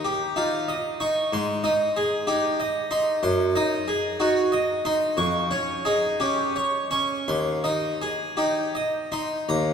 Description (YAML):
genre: classical, baroque-style suite movement for harpsichord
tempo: 54-64 BPM (dotted quarters)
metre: 12/8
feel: rubato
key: Ab major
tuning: A4 = 440 Hz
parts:
  - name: harpsichord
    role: solo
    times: 0.0-9.7 s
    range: Eb2 to Db6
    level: -22 LUFS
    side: equal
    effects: none
room: wet church reverb, RT60 3.4 s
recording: heard from further back in the room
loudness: -22 LUFS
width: side -7 dB against mid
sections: 0.0-9.7 A section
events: none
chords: 0.0 Eb7; 1.3 Ab; 3.2 Ab7/Gb; 5.2 Db/F; 7.3 Ab/Eb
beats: 0.38 1.33 2.28 | 3.23 4.20 5.17 6.19 | 7.27 8.37 9.48